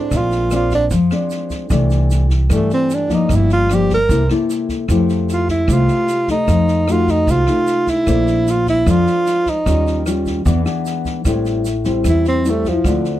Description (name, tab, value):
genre	bossa nova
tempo	151 BPM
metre	4/4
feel	straight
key	unclear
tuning	A4 = 440 Hz
part	breathy tenor saxophone	melody	0.0-13.1 s	F3 to Bb4	-17 LUFS	right 2 dB	none
part	nylon-string guitar	accompaniment	0.0-13.2 s	G2 to C5	-19 LUFS	left 3 dB	none
part	upright bass	bass	0.1-13.2 s	G1 to G2	-18 LUFS	right 1 dB	none
part	open jazz drum kit	drums	0.1-13.1 s	kick drum, rim click, snare drum	-25 LUFS	equal	none
part	tube shaker	percussion	0.1-13.2 s	none	-37 LUFS	right 12 dB	none
room	little or no reverb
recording	dry, close 1970s-style studio recording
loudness	-14 LUFS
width	side -13 dB against mid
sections	0.0-11.3 A section; 11.3-13.2 A section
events	tenor saxophone solo 0.0-11.3, 11.3-13.2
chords	0.1 Bb9; 1.7 C69; 3.3 Gm7; 4.1 C6; 4.9 Fmaj9; 6.5 F7b9; 8.1 Bbmaj9; 9.7 Eb9; 10.5 E7; 11.3 Am7